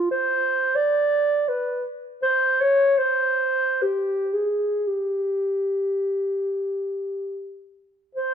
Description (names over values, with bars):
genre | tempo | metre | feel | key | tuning
classical, free, expressive piece for unaccompanied clarinet | 43-85 BPM | 3/4 | rubato | unclear | A4 = 440 Hz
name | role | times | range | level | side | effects
dark clarinet | solo | 0.0-8.3 s | F4 to D5 | -21 LUFS | equal | none
room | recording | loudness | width
light reverb | dark, warm production | -20 LUFS | side -8 dB against mid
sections
0.0-8.2 A section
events
none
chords
none